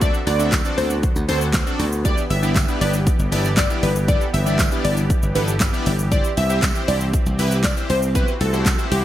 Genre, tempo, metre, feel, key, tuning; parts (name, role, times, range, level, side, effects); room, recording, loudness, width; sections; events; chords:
dance-pop; 118 BPM; 4/4; straight; G major; A4 = 440 Hz
plucky unison lead; melody; 0.0-9.0 s; G4 to E5; -25 LUFS; equal; analog chorus, sidechain pumping, digital delay
big bright polysynth; accompaniment; 0.0-9.0 s; B3 to E5; -27 LUFS; left 1 dB; analog chorus, sidechain pumping
filtered supersaw swell; sustained chords; 0.0-9.0 s; D3 to G4; -29 LUFS; right 1 dB; sidechain pumping
slap bass; bass; 0.0-9.0 s; G1 to D2; -21 LUFS; equal; sidechain pumping
pop drum kit; drums; 0.0-9.0 s; handclaps, hi-hat, kick drum, shaker, snare drum; -21 LUFS; equal; gated reverb
tambourine; percussion; 0.5-8.8 s; -35 LUFS; right 6 dB
light reverb, digital ambience; bright 1980s-style digital production; -17 LUFS; side -13 dB against mid
0.0-9.0 A section
0.0 D7; 2.0 G6; 6.1 C